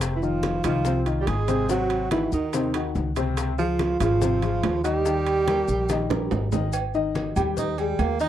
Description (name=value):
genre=Afro-Cuban jazz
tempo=143 BPM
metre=4/4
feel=straight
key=Ab major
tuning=A4 = 439 Hz
part: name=warm upright piano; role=accompaniment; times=0.0-8.3 s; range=C3 to Ab5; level=-27 LUFS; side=left 4 dB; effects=none
part: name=upright bass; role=bass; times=0.0-8.3 s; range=F1 to Eb2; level=-28 LUFS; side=equal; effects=none
part: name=bongos and cowbell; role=percussion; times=0.0-8.3 s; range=none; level=-36 LUFS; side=left 8 dB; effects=none
part: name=congas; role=percussion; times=0.0-8.3 s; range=none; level=-33 LUFS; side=left 1 dB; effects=none
part: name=maracas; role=percussion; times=0.0-8.3 s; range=none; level=-41 LUFS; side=left 10 dB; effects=none
part: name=timbales and agogo bells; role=percussion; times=0.0-8.2 s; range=none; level=-32 LUFS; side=right 10 dB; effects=none
part: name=mellow alto saxophone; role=melody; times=0.2-6.3 s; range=Eb4 to Ab4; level=-26 LUFS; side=right 2 dB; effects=none
part: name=breathy tenor saxophone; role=second line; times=0.2-8.3 s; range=Eb3 to Eb4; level=-30 LUFS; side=right 7 dB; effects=none
room=light reverb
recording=dry, close 1970s-style studio recording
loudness=-22 LUFS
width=side -11 dB against mid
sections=0.0-6.7 A section; 6.7-8.3 B section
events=drum fill 5.9-6.7; tenor saxophone solo 6.7-8.3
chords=0.0 Fm7; 1.7 Ab7; 3.4 Dbmaj7; 5.1 Eb; 6.7 Ab5